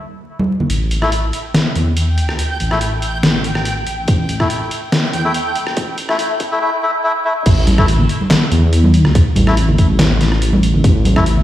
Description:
deep dubstep; 142 BPM; 4/4; half-time; A4 = 436 Hz
congas; percussion; 0.4-0.7, 7.7-11.4 s; -18 LUFS; right 2 dB; dub echo
dark detuned saw bass; bass; 0.7-11.4 s; A1 to E2; -15 LUFS; equal
trip hop sampler-style drum kit; drums; 0.7-11.4 s; crash cymbal, handclaps, hi-hat, rim click, snare drum; -19 LUFS; equal
backwards swelling texture; texture; 2.1-6.6 s; G5; -26 LUFS; right 3 dB; built-in reverb
melodica; stabs; 1.0-11.2 s; A3 to E5; -20 LUFS; left 2 dB; low-pass filter, dub echo
electronic kick drum; drums; 4.1-11.2 s; -13 LUFS; equal
light reverb; played on a big sound system in a bare room, large studio reverb, vinyl crackle, high-pass filter; -13 LUFS; side -13 dB against mid
0.7-7.5 A section; 7.5-11.4 B section
build-up 0.7-7.5; drop 7.5-11.4
0.0 N.C.; 0.7 A5

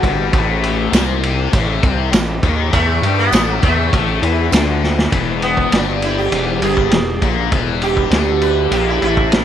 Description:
psychedelic rock; 100 BPM; 4/4; straight; A4 = 440 Hz
thick fuzz guitar; riff; 0.0-9.4 s; E2 to G4; -20 LUFS; left 12 dB; distortion, phaser
gritty driven synth bass; bass; 0.0-9.4 s; E1 to G2; -19 LUFS; right 1 dB
vintage drum kit; drums; 0.0-9.4 s; kick drum, ride cymbal, snare drum; -18 LUFS; right 1 dB
tambourine; percussion; 0.9-4.7 s; -29 LUFS; right 17 dB
sitar; melody; 2.7-9.4 s; A3 to B4; -20 LUFS; right 3 dB; slapback echo
light reverb; 1960s-style stereo with parts hard left and right; -13 LUFS; side -10 dB against mid
0.0-5.1 A section; 5.1-9.4 B section
drum fill 4.8; sitar solo 5.1-9.4
0.3 A5; 5.1 N.C.

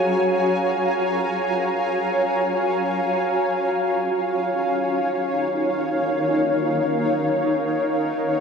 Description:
ambient; free time; F# major; A4 = 441 Hz
granular cloud pad; solo; 0.0-8.4 s; D#4 to A#5; -19 LUFS; equal; built-in reverb, ping-pong delay
wet huge ambient reverb, RT60 8.7 s; cassette tape; -20 LUFS; side -6 dB against mid
0.0-8.4 A section
0.0 F#maj7; 3.9 D#m7

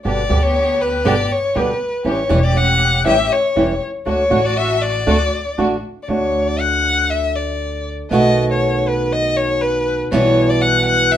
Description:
tango; 120 BPM; 4/4; rubato; D major; A4 = 438 Hz
flamenco guitar; accompaniment; 0.0-11.2 s; B2 to G4; -19 LUFS; right 3 dB
warm violin; second line; 0.1-11.2 s; B4 to F#5; -17 LUFS; left 3 dB
muted symphonic string section; stabs; 0.1-5.8 s; A3 to G4; -24 LUFS; equal
upright bass; bass; 0.1-11.2 s; E1 to D2; -22 LUFS; equal
moderate club reverb, RT60 0.8 s; minimal, uncompressed stereo recording; -14 LUFS; side -10 dB against mid
0.0-6.1 A section; 6.1-11.2 A section
violin solo 0.0-6.1, 6.1-11.2
0.1 G; 2.1 A7; 4.1 D; 8.1 B7; 10.1 Em/B

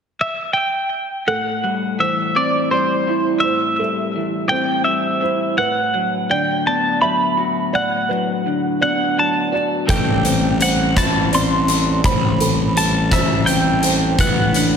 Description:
post-rock; 56 BPM (dotted quarters); 6/8; straight; A dorian; A4 = 440 Hz
twelve-string electric guitar; melody; 0.2-14.8 s; C5 to C6; -19 LUFS; right 1 dB; slapback echo, digital delay
electric guitar through a small old amp; arpeggios; 1.3-14.8 s; A2 to A4; -22 LUFS; left 2 dB; phaser, slapback echo, digital delay
felt-muted upright piano; arpeggios; 1.3-14.8 s; A4 to E5; -27 LUFS; right 4 dB; slapback echo, digital delay
pedal steel guitar; sustained chords; 9.9-14.8 s; G3 to C4; -30 LUFS; right 2 dB
fuzz picked electric bass; bass; 9.9-14.8 s; A1; -20 LUFS; equal; overdrive
huge arena drum kit; drums; 9.9-14.7 s; hi-hat, kick drum, rim click; -19 LUFS; left 1 dB
moderate lush hall reverb, RT60 2.0 s, small room ambience; big arena sound; -16 LUFS; side -7 dB against mid
0.0-1.3 A section; 1.3-14.8 B section
0.0 N.C.; 1.3 Am7; 5.6 Bm7/A; 9.9 Am7; 14.2 Gadd9/A

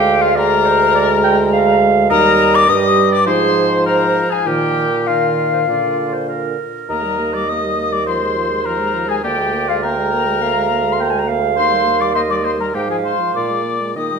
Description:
quick classical-period movement for wind quintet; 102 BPM; 4/4; rubato; A4 = 438 Hz
silver concert flute; melody; 0.0-14.2 s; F5 to Eb6; -19 LUFS; left 6 dB
warm oboe; second line; 0.0-14.2 s; F4 to Eb5; -21 LUFS; left 4 dB
warm French horn; accompaniment; 0.0-14.2 s; D3 to Bb3; -22 LUFS; equal
warm clarinet; accompaniment; 0.0-14.2 s; G4 to G5; -20 LUFS; right 8 dB
dark bassoon; bass; 0.0-14.2 s; D2 to Eb3; -20 LUFS; right 3 dB
wet recital hall reverb, RT60 1.4 s; -13 LUFS; side -6 dB against mid
0.0-14.2 A section
0.0 Bb7/D; 2.1 Eb; 3.3 Fm/Ab; 4.5 Bbsus4; 5.7 Bb; 6.9 Eb; 8.1 Fm7/Eb; 9.2 Bb7/D; 11.6 Eb; 12.7 Fm/Ab; 13.3 Bb7

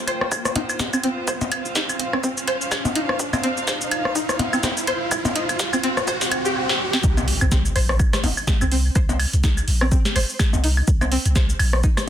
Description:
minimal techno; 125 BPM; 4/4; swing 57% on 16ths; A4 = 440 Hz
riser, swell and impact; sound effects; 0.0-9.0 s; -28 LUFS; equal
dark studio string section; texture; 0.0-6.6 s; F4 to G5; -31 LUFS; right 1 dB; sidechain pumping
string-like resonator pluck; riff; 0.1-11.9 s; C4 to C5; -26 LUFS; equal; chorus, sidechain pumping, tape echo
punchy sub bass; bass; 0.1-11.9 s; G1 to C2; -21 LUFS; equal; sidechain pumping, high-pass filter
booming analog drum machine; drums; 0.1-12.1 s; hi-hat, shaker, snare drum; -25 LUFS; equal; high-pass filter on hats, high-pass filter on snare, high-pass filter on perc, high-pass filter on room
electronic claves, rim click and percussion blips; percussion; 0.1-12.1 s; -25 LUFS; left 2 dB; tape echo
electronic kick drum; drums; 0.3-11.9 s; -20 LUFS; equal; overdrive, high-pass filter on kick
moderate studio reverb, RT60 0.5 s; dense, heavily limited modern master; -18 LUFS; side -10 dB against mid
0.0-7.0 A section; 7.0-12.1 B section
build-up 0.0-7.0; riser 0.0-7.0; swell 6.1-7.0; drum fill 6.7-7.0; drop 7.0-12.1; impact 7.0-9.0
0.0 Csus4

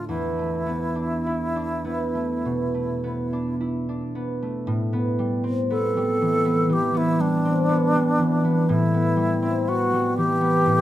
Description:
classical, impressionist duo for alto flute and harp; 51-62 BPM; 4/4; rubato; A minor; A4 = 439 Hz
bright alto flute; melody; 0.0-10.8 s; D4 to A4; -24 LUFS; left 1 dB
concert harp; accompaniment; 0.0-10.8 s; E2 to F4; -22 LUFS; equal
moderate recital hall reverb, RT60 1.4 s; close, detailed microphones; -20 LUFS; side -13 dB against mid
0.0-4.7 A section; 4.7-10.8 B section
0.1 E7sus4; 4.7 Am9

